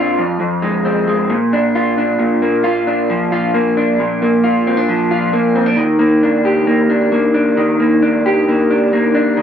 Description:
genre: indie pop.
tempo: 134 BPM.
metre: 4/4.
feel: straight.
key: Eb major.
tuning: A4 = 440 Hz.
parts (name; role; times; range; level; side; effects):
electric guitar through a small old amp; solo; 0.0-9.4 s; F2 to G4; -12 LUFS; equal; analog chorus.
room: wet studio reverb, RT60 0.6 s.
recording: none.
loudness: -12 LUFS.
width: side -8 dB against mid.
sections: 0.0-2.2 A section; 2.2-5.8 B section; 5.8-9.4 C section.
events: none.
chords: 0.2 Fm; 1.3 Bb; 5.8 Ebmaj7.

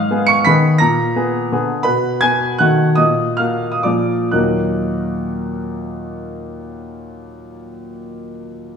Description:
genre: classical, romantic triple-time dance for piano with dotted rhythms.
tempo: 115-184 BPM.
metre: 3/4.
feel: rubato.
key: Eb minor.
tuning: A4 = 440 Hz.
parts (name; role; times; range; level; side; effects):
clear concert grand piano; solo; 0.0-8.8 s; Eb2 to Db7; -16 LUFS; equal; none.
room: wet recital hall reverb, RT60 1.4 s.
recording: none.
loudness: -14 LUFS.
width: side -6 dB against mid.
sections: 0.0-4.3 A section; 4.3-7.1 B section.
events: slowing down 1.3-4.3.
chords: 0.0 Fm7b5/Ab; 0.8 Bb7b9; 1.9 B5; 2.6 B7; 3.0 Ebm/Bb; 3.8 Bb7; 4.3 Ebm.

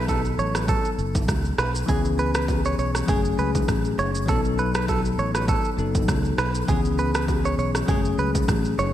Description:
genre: afrobeats.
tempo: 100 BPM.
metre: 4/4.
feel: swing 55% on 16ths.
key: unclear.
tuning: A4 = 440 Hz.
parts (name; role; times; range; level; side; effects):
bell-like tine electric piano; accompaniment; 0.0-8.9 s; D#3 to A4; -27 LUFS; left 4 dB; none.
direct-recorded clean electric guitar; riff; 0.0-8.9 s; G#4 to C#5; -28 LUFS; right 4 dB; digital delay.
fingered electric bass; bass; 0.0-8.9 s; F#1 to C#2; -26 LUFS; equal; none.
deep house drum kit; drums; 0.1-8.9 s; kick drum, rim click, shaker; -26 LUFS; equal; overdrive, vintage 12-bit sampler grit, gated reverb.
bongos and congas; percussion; 0.1-8.9 s; none; -36 LUFS; right 3 dB; none.
room: moderate lush hall reverb, RT60 1.7 s.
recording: bright 1980s-style digital production.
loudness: -20 LUFS.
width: side -12 dB against mid.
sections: 0.0-8.9 A section.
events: none.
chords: 0.0 B7; 1.9 C#m7; 3.1 F#madd9; 4.3 B7; 6.7 C#m7; 7.9 F#madd9.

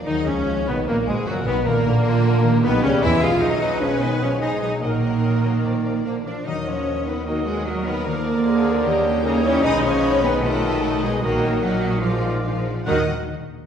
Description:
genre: classical, dramatic, fast romantic movement for symphony orchestra.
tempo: 150 BPM.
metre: 4/4.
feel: rubato.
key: Eb minor.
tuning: A4 = 440 Hz.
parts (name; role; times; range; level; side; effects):
mellow large flute ensemble; second line; 0.0-13.1 s; F4 to F5; -30 LUFS; left 2 dB; none.
warm symphonic violin section; second line; 0.0-13.1 s; F4 to F5; -30 LUFS; left 3 dB; none.
mellow bassoon; accompaniment; 0.0-13.0 s; Gb2 to Ab3; -30 LUFS; right 1 dB; none.
rich symphonic viola section; accompaniment; 0.0-13.1 s; D4 to Cb5; -30 LUFS; equal; none.
warm French horn section; sustained chords; 0.0-13.0 s; Ab2 to Eb4; -27 LUFS; left 2 dB; none.
concert harp; arpeggios; 0.0-13.1 s; Bb2 to Bb5; -31 LUFS; left 5 dB; none.
rich symphonic cello section; bass; 0.0-13.1 s; Eb3 to F4; -24 LUFS; right 3 dB; none.
warm studio violin section; melody; 0.1-13.1 s; Ab3 to Cb6; -32 LUFS; left 5 dB; none.
clear oboe; second line; 0.1-13.0 s; Bb3 to Gb5; -33 LUFS; equal; none.
mellow clarinet; second line; 0.1-13.1 s; Gb3 to Db5; -31 LUFS; equal; none.
dark symphonic double bass section; bass; 0.1-13.1 s; Gb1 to Fb2; -25 LUFS; right 2 dB; none.
room: wet recital hall reverb, RT60 1.6 s.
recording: heard from further back in the room.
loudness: -18 LUFS.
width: side -8 dB against mid.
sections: 0.1-12.9 A section.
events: none.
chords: 0.1 Ebm; 1.7 Bb; 2.4 Eb7/Bb; 3.2 Abm/Cb; 4.8 Ebm/Bb; 5.6 Bb; 6.5 Ebm; 8.1 Bb/Eb; 8.9 Eb7; 9.6 Abm/Cb; 10.4 B7; 11.2 Ebm/Bb; 12.0 Bb7; 12.9 Ebm.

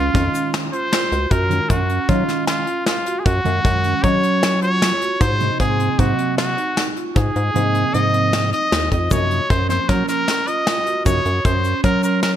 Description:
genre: progressive instrumental, band music in an uneven meter.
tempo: 154 BPM.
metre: 5/4.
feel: straight.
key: Gb lydian.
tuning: A4 = 440 Hz.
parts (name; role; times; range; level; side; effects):
bright trumpet; melody; 0.0-12.3 s; F4 to Eb5; -20 LUFS; left 1 dB; digital delay.
marimba with medium mallets; arpeggios; 0.0-12.3 s; C4 to Gb4; -25 LUFS; right 6 dB; none.
rubbery square bass; bass; 0.0-12.4 s; Db2 to Gb3; -20 LUFS; equal; none.
hollow-body jazz guitar; accompaniment; 0.1-11.2 s; C3 to F5; -26 LUFS; right 1 dB; double-tracked left and right.
soft brush drum kit; drums; 0.1-12.3 s; hi-hat, kick drum, snare drum; -21 LUFS; left 1 dB; gated reverb.
egg shaker; percussion; 0.3-1.0, 9.1-12.2 s; none; -37 LUFS; left 7 dB; none.
room: light reverb, studio reverb.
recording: bright 1980s-style digital production.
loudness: -16 LUFS.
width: side -10 dB against mid.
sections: 0.0-1.3 A section; 1.3-12.4 B section.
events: hollow-body jazz guitar fill 0.7-1.3.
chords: 0.0 Dbmaj7; 1.3 Gbmaj7(no3); 5.2 Ab7; 9.1 Gbmaj7.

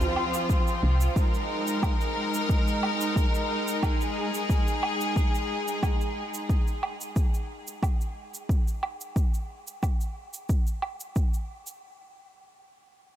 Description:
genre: organic downtempo.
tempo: 90 BPM.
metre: 4/4.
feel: straight.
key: Ab major.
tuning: A4 = 438 Hz.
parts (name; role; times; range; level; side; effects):
bright symphonic string section; sustained chords; 0.0-6.5 s; F3 to Bb4; -29 LUFS; equal; sidechain pumping.
cabasa and woodblock; drums; 0.0-11.8 s; none; -38 LUFS; right 3 dB; overdrive.
electronic kick drum; drums; 0.5-11.3 s; none; -25 LUFS; equal; overdrive.
woody FM bass; bass; 0.8-1.1 s; C2; -22 LUFS; equal; sidechain pumping.
room: moderate huge ambient reverb, RT60 7.8 s.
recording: dreamy mix soaked in reverb.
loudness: -25 LUFS.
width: side -11 dB against mid.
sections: 0.0-11.8 A section; 11.8-13.2 B section.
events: none.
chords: 0.0 F5; 1.2 Ab5; 6.5 N.C..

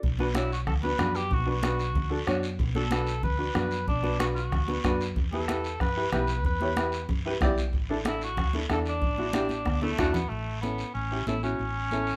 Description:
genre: latin, cumbia.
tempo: 187 BPM.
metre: 4/4.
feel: straight.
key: unclear.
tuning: A4 = 437 Hz.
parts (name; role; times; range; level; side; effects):
hollow-body short-scale fingered electric bass; bass; 0.0-12.1 s; A1 to G2; -34 LUFS; equal; none.
bombo; percussion; 0.0-10.1 s; none; -34 LUFS; equal; none.
congas; percussion; 0.0-12.1 s; none; -38 LUFS; equal; none.
guiro; percussion; 0.0-12.2 s; none; -43 LUFS; equal; none.
warm upright piano; accompaniment; 0.2-12.1 s; C#4 to A5; -33 LUFS; equal; none.
warm cor anglais; second line; 0.4-12.2 s; A3 to B4; -34 LUFS; equal; none.
room: moderate studio reverb, RT60 0.8 s.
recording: none.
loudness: -28 LUFS.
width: mono.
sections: 0.0-10.3 A section; 10.3-12.2 B section.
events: cor anglais solo 0.0-10.3, 10.3-12.2; drum fill 9.5-10.3; upright piano fill 9.8-10.3.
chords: 0.0 Bm; 5.2 Em; 7.7 Asus4; 10.3 A.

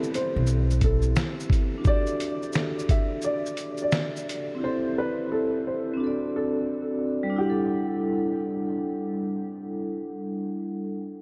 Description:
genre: lo-fi hip hop.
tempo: 87 BPM.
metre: 4/4.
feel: swing 65% on 16ths.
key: E minor.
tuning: A4 = 440 Hz.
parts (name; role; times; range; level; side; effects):
dark upright piano; melody; 0.0-9.4 s; G4 to E5; -34 LUFS; equal; subtle chorus, low-pass filter, diffuse ambient delay.
vibraphone with medium hard mallets; accompaniment; 0.0-11.2 s; G3 to F#5; -31 LUFS; equal; cassette tape, low-pass filter.
lo-fi sampler-style drum kit; drums; 0.0-4.5 s; finger snaps, hi-hat, kick drum, shaker, snare drum; -28 LUFS; equal; none.
upright bass; bass; 0.4-1.1 s; B1; -25 LUFS; equal; none.
room: moderate huge ambient reverb, RT60 8.4 s.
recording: dreamy mix soaked in reverb.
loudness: -27 LUFS.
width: mono.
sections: 0.0-7.4 A section; 7.4-10.1 B section.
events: none.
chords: 0.0 Am7; 1.9 Em11; 4.6 Am7; 6.0 D7; 7.4 Em11.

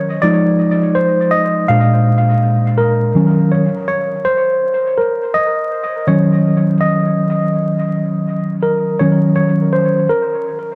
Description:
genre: hip hop.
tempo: 82 BPM.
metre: 4/4.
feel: swing 62% on 16ths.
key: Eb dorian.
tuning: A4 = 441 Hz.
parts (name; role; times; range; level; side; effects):
mellow tine electric piano; solo; 0.0-10.8 s; Bb2 to F5; -15 LUFS; equal; dub echo.
room: wet spring reverb, RT60 1.1 s.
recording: echo-heavy mix, vinyl crackle.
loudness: -15 LUFS.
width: mono.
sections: 0.0-9.0 A section; 9.0-10.8 A section.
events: tine electric piano solo 0.0-9.0, 9.0-10.8.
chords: 0.2 Fm7; 1.7 Bb7; 3.2 Ebm7.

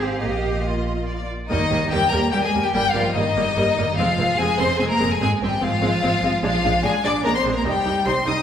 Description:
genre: quick classical-period movement for string orchestra.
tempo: 146 BPM.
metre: 3/4.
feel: straight.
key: Eb major.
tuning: A4 = 440 Hz.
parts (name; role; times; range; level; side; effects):
rich chamber violin section; melody; 0.0-8.4 s; Eb5 to Eb6; -22 LUFS; left 4 dB; none.
clear chamber violin section; second line; 0.0-8.4 s; Eb4 to Eb5; -26 LUFS; left 1 dB; none.
rich chamber viola section; accompaniment; 0.0-8.3 s; G3 to Eb4; -25 LUFS; right 1 dB; none.
rich studio double bass section; bass; 0.0-8.3 s; F1 to Eb2; -26 LUFS; right 1 dB; none.
warm chamber cello section; bass; 0.0-8.4 s; Eb3 to G4; -26 LUFS; right 2 dB; none.
room: wet scoring stage reverb, RT60 1.6 s.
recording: recorded in a church or concert hall.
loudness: -18 LUFS.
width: side -9 dB against mid.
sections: 0.0-1.5 A section; 1.5-8.4 B section.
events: none.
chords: 0.2 Bbsus4; 1.1 Bb; 1.5 Eb; 2.7 Eb/G; 4.0 Fm; 5.2 Fm/Ab; 6.4 Bb7; 7.7 Cm.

